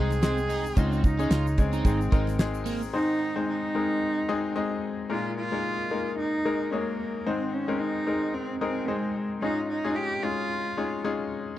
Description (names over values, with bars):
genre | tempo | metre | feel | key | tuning
piano-driven pop | 111 BPM | 4/4 | swing 56% on 16ths | Ab major | A4 = 440 Hz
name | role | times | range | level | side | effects
warm cello | melody | 0.0-11.0 s | Ab3 to Ab4 | -30 LUFS | right 2 dB | none
bright grand piano | accompaniment | 0.0-11.6 s | Ab2 to Eb5 | -29 LUFS | left 4 dB | none
crunchy overdriven guitar | riff | 0.0-2.8 s | Bb3 to F4 | -33 LUFS | right 5 dB | none
vintage muted fingered electric bass | bass | 0.0-2.9 s | Ab1 to Db2 | -28 LUFS | right 1 dB | none
damped 70s drum kit | drums | 0.1-2.9 s | hi-hat, kick drum, ride cymbal, snare drum | -23 LUFS | equal | none
tube shaker | percussion | 0.1-2.9 s | none | -51 LUFS | right 13 dB | none
room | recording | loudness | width
little or no reverb | dry, close 1970s-style studio recording | -25 LUFS | side -13 dB against mid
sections
0.0-2.9 A section; 2.9-11.6 A section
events
none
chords
0.0 Ab; 0.8 Dbadd9; 1.8 Ab; 5.1 Ebsus4; 7.3 Ab; 9.4 Dbadd9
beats
0.23 | 0.77 1.31 1.85 2.39 | 2.93 3.47 4.01 4.55 | 5.09 5.63 6.18 6.72 | 7.26 7.80 8.34 8.88 | 9.42 9.96 10.50 11.04 | 11.58